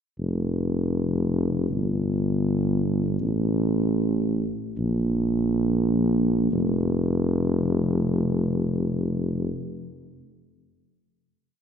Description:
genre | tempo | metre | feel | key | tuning
post-rock | free time | none | none | F major | A4 = 439 Hz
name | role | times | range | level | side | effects
mellow tuba | solo | 0.2-9.5 s | F1 to Bb1 | -22 LUFS | equal | none
room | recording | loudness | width
wet concert hall reverb, RT60 2.0 s | recorded in a church or concert hall | -22 LUFS | side -8 dB against mid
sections
0.2-6.5 A section; 6.5-10.3 final note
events
slowing down 3.2-6.5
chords
none

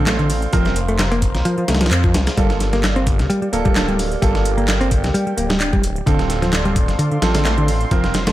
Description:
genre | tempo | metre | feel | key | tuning
breakbeat, breaks | 130 BPM | 4/4 | swing 54% on 16ths | G minor | A4 = 442 Hz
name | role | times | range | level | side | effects
dark analog pad | sustained chords | 0.0-8.3 s | G4 to C6 | -27 LUFS | equal | chorus, sidechain pumping
picked electric bass | riff | 0.0-8.3 s | D3 to D4 | -21 LUFS | equal | digital delay
bright grand piano | stabs | 0.0-8.1 s | Bb3 to Bb4 | -24 LUFS | right 5 dB | digital delay
phased detuned saw bass | bass | 0.0-8.3 s | D1 to F2 | -20 LUFS | equal | phaser
dusty soul sampler-style drum kit | drums | 0.1-8.3 s | hi-hat, kick drum, snare drum | -20 LUFS | equal | studio reverb
house drum kit | drums | 0.1-8.3 s | handclaps, hi-hat | -26 LUFS | right 1 dB | studio reverb
room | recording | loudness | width
little or no reverb | none | -15 LUFS | side -14 dB against mid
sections
0.0-8.3 A section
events
none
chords
0.0 Dm7; 0.5 Fsus4; 2.4 Gm7; 6.1 Dm7

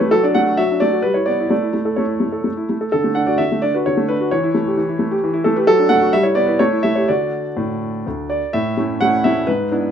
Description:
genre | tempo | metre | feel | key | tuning
classical-period piano sonatina | 121-134 BPM | 3/4 | rubato | D major | A4 = 440 Hz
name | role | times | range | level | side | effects
warm grand piano | solo | 0.0-9.9 s | D2 to F#5 | -15 LUFS | equal | none
room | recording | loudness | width
light reverb | none | -15 LUFS | side -8 dB against mid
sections
0.0-8.5 A section; 8.5-9.9 B section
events
none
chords
0.1 D/F#; 1.0 Em/G; 1.5 A; 2.9 D; 4.3 A7/E; 5.7 D/F#; 6.1 Em/G; 6.6 A7; 7.1 D; 8.5 A

